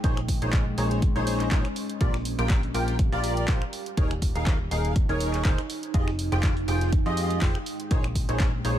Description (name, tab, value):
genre	piano house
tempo	122 BPM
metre	4/4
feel	swing 54% on 16ths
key	unclear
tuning	A4 = 440 Hz
part	percussive organ stab	riff	0.0-8.8 s	Eb4 to G5	-30 LUFS	equal	ensemble chorus, sidechain pumping, dub echo
part	plucky analog bass	bass	0.0-8.8 s	Eb1 to F2	-28 LUFS	equal	sidechain pumping
part	dusty soul sampler-style drum kit	drums	0.0-8.8 s	hi-hat, snare drum	-45 LUFS	right 1 dB	none
part	electronic kick drum	drums	0.0-8.5 s	none	-24 LUFS	equal	none
part	punchy analog drum machine	drums	0.0-8.8 s	finger snaps, handclaps, hi-hat	-35 LUFS	equal	none
part	deep dark ambient pad	texture	0.0-8.8 s	Ab3 to C6	-34 LUFS	right 1 dB	chorus, built-in reverb, sidechain pumping
room	digital ambience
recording	none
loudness	-23 LUFS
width	side -11 dB against mid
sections	0.0-8.8 A section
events	none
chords	0.0 Bbm11; 2.0 Gm7/Bb; 4.0 Eb7sus4; 5.9 Fm9; 7.7 Bbm11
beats	| 0.04 0.53 1.02 1.51 | 2.01 2.50 2.99 3.48 | 3.97 4.47 4.96 5.45 | 5.94 6.43 6.92 7.42 | 7.91 8.40